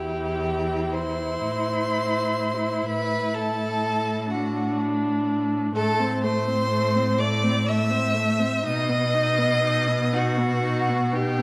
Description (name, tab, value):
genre	classical, slow romantic movement for string quartet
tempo	41 BPM (dotted quarters)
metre	6/8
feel	rubato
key	unclear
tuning	A4 = 438 Hz
part	rich violin	melody	0.0-11.4 s	F#5 to E6	-32 LUFS	equal	none
part	rich violin	second line	0.0-11.4 s	F#4 to E5	-29 LUFS	equal	none
part	rich viola	accompaniment	0.0-11.4 s	A3 to E4	-30 LUFS	equal	none
part	rich cello	bass	0.0-11.4 s	E2 to B2	-29 LUFS	equal	none
room	wet recital hall reverb, RT60 1.7 s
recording	vinyl crackle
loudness	-24 LUFS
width	mono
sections	0.0-11.4 A section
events	none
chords	0.0 Em; 1.4 Am; 2.9 D5/A; 5.8 Am; 8.7 B